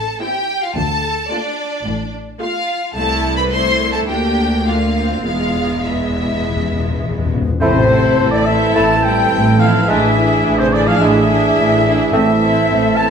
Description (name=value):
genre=classical, dramatic, fast romantic movement for symphony orchestra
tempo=100-110 BPM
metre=4/4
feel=rubato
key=A minor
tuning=A4 = 440 Hz
part: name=rich symphonic violin section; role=melody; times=0.0-13.1 s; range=G#4 to C6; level=-23 LUFS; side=left 1 dB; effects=none
part: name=rich symphonic violin section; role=second line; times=0.0-13.1 s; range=D4 to A5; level=-24 LUFS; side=left 1 dB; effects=none
part: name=clear symphonic cello section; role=bass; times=0.0-13.1 s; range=C2 to A2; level=-21 LUFS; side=equal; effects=none
part: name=rich symphonic double bass section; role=bass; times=0.0-13.1 s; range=E1 to D2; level=-22 LUFS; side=right 1 dB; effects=none
part: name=timpani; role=percussion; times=0.0-0.5, 5.2-8.4, 12.1-12.9 s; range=E2 to A2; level=-23 LUFS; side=left 2 dB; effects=none
part: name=rich symphonic viola section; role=accompaniment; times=0.2-13.1 s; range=G#3 to F4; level=-21 LUFS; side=right 2 dB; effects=none
part: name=hollow concert flute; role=second line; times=7.6-13.1 s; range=C5 to A5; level=-20 LUFS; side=left 1 dB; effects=none
part: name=warm clarinet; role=second line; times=7.6-12.3 s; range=C4 to E4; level=-23 LUFS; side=left 1 dB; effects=none
part: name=warm oboe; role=second line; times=7.6-13.1 s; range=C5 to A5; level=-20 LUFS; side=left 1 dB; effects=none
part: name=warm bassoon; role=accompaniment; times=7.6-12.3 s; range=G#3 to A3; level=-21 LUFS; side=right 1 dB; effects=none
part: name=dark French horn section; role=sustained chords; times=7.6-13.0 s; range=C3 to A3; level=-22 LUFS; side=left 1 dB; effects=none
part: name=dark trombone section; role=sustained chords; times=7.6-13.1 s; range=E3 to E4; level=-23 LUFS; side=right 1 dB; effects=none
part: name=dark trumpet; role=stabs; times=7.6-13.1 s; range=G#4 to A4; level=-21 LUFS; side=right 2 dB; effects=none
room=wet stone room reverb, RT60 1.1 s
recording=none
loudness=-13 LUFS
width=side -7 dB against mid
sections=0.0-7.6 A section; 7.6-13.1 B section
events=timpani fill 5.2-7.6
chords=0.0 Am; 0.8 Dm; 2.9 Am/C; 4.1 Bb/D; 5.2 E; 7.6 Am; 9.9 E7/A; 12.1 Am